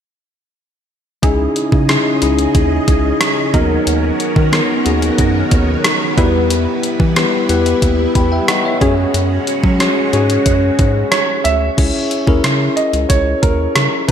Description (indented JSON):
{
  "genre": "1980s-style pop",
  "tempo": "91 BPM",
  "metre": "4/4",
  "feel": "straight",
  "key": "unclear",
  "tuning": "A4 = 439 Hz",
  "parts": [
    { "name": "bell-like tine electric piano", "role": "accompaniment", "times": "1.2-14.1 s", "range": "B3 to B5", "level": "-17 LUFS", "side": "left 2 dB", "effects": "shimmer reverb" },
    { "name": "string machine, full ensemble", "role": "sustained chords", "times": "1.2-11.8 s", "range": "C#3 to D#5", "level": "-22 LUFS", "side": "right 1 dB", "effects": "phaser, ensemble chorus, shimmer reverb" },
    { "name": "funky polysynth comp", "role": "stabs", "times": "1.2-11.7 s", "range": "F#3 to B4", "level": "-25 LUFS", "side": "right 3 dB", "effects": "chorus, shimmer reverb" },
    { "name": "rubbery square bass", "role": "bass", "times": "1.2-14.1 s", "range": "C#2 to F#3", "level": "-18 LUFS", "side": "equal", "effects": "none" },
    { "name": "gated 80s digital drum machine", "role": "drums", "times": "1.2-14.1 s", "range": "crash cymbal, hi-hat, kick drum, rim click", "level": "-16 LUFS", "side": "equal", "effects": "overdrive, gated reverb" },
    { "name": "warm baby grand piano", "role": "melody", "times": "11.1-14.1 s", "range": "A#4 to E5", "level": "-18 LUFS", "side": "right 3 dB", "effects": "shimmer reverb, ping-pong delay" }
  ],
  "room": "moderate plate reverb, RT60 2.5 s",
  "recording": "bright 1980s-style digital production",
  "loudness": "-12 LUFS",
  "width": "side -8 dB against mid",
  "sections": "1.2-11.8 A section; 11.8-14.1 B section",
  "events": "none",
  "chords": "1.2 C#madd9; 3.5 Bmaj7/D#; 6.2 Em; 8.8 F#sus2; 11.8 C#madd9"
}